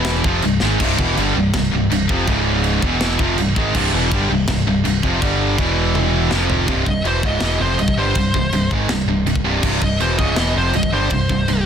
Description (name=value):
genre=heavy metal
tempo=163 BPM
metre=4/4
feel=straight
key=unclear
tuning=A4 = 440 Hz
part: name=heavy high-gain guitar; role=riff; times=0.0-11.6 s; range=C2 to Ab3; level=-22 LUFS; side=left 10 dB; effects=distortion
part: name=heavy high-gain guitar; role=riff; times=0.0-6.7 s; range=C2 to Ab3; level=-23 LUFS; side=left 1 dB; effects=distortion
part: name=tight distorted guitar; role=riff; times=0.0-11.6 s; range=C2 to Ab3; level=-21 LUFS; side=right 11 dB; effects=distortion
part: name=growling picked electric bass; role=bass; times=0.0-11.7 s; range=C1 to Ab1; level=-22 LUFS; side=equal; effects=overdrive
part: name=tight metal drum kit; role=drums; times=0.0-11.6 s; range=china cymbal, crash cymbal, kick drum, snare drum, toms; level=-23 LUFS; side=equal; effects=soft clipping on kick
part: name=high-gain lead guitar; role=melody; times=6.9-11.7 s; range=C5 to Eb5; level=-22 LUFS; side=left 1 dB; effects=distortion
room=light reverb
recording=dense, heavily limited modern master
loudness=-15 LUFS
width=side -8 dB against mid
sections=0.0-6.7 A section; 6.7-11.7 B section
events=drum fill 0.6, 6.0-6.7; lead electric guitar solo 6.7-11.7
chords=0.3 C; 2.3 Db5; 2.8 E5; 3.2 C; 5.2 G5; 5.6 E5; 6.3 F5; 6.7 C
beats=0.07 0.44 | 0.80 1.17 1.54 1.91 | 2.27 2.64 3.01 3.38 | 3.75 4.12 4.48 4.85 | 5.22 5.59 5.96 6.33 | 6.69 7.06 7.43 7.80 | 8.17 8.54 8.91 9.28 | 9.64 10.01 10.38 10.75 | 11.12 11.48